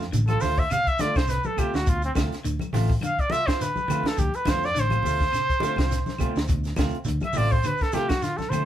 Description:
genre	afrobeat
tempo	104 BPM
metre	4/4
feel	swing 54% on 16ths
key	D dorian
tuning	A4 = 442 Hz
part	semi-hollow electric guitar	stabs	0.0-8.7 s	A3 to F4	-33 LUFS	right 4 dB	none
part	hollow-body short-scale fingered electric bass	bass	0.0-8.6 s	A1 to D3	-26 LUFS	equal	none
part	compact cocktail drum kit	drums	0.0-8.7 s	hi-hat, kick drum, snare drum	-27 LUFS	equal	none
part	semi-hollow electric guitar	arpeggios	0.1-8.7 s	B2 to F3	-34 LUFS	left 2 dB	none
part	congas	percussion	0.1-8.7 s	none	-33 LUFS	left 1 dB	none
part	shekere	percussion	0.1-8.7 s	none	-37 LUFS	right 3 dB	none
part	breathy trumpet	melody	0.3-8.7 s	C4 to F5	-25 LUFS	equal	none
part	claves	percussion	0.3-8.7 s	none	-41 LUFS	left 5 dB	none
room	moderate small room reverb, RT60 0.5 s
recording	band playing live in one room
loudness	-22 LUFS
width	side -11 dB against mid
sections	0.0-8.7 A section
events	trumpet solo 0.0-8.7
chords	0.0 Dm7

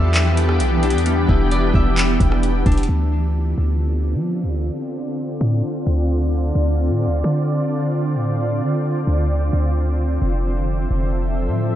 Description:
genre	hip hop, atmospheric cloud-rap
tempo	131 BPM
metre	4/4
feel	half-time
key	unclear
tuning	A4 = 441 Hz
part	shimmering ambient pad	sustained chords	0.0-11.8 s	D3 to E5	-22 LUFS	equal	chorus, built-in reverb, sidechain pumping, low-pass filter
part	Celtic harp	arpeggios	0.0-5.5 s	G3 to E5	-29 LUFS	left 1 dB	tape echo
part	warm 808-style bass	bass	0.0-11.8 s	E1 to F3	-19 LUFS	equal	none
part	smooth R&B drum kit	drums	0.1-2.9 s	handclaps, hi-hat, kick drum, rim click	-21 LUFS	equal	none
room	digital ambience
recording	dark, warm production, nothing above 10.8 kHz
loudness	-17 LUFS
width	side -12 dB against mid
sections	0.0-2.9 A section; 2.9-11.8 B section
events	filter sweep on ambient pad 2.9-11.8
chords	0.0 Em7; 2.9 Dm7; 10.2 Fmaj7

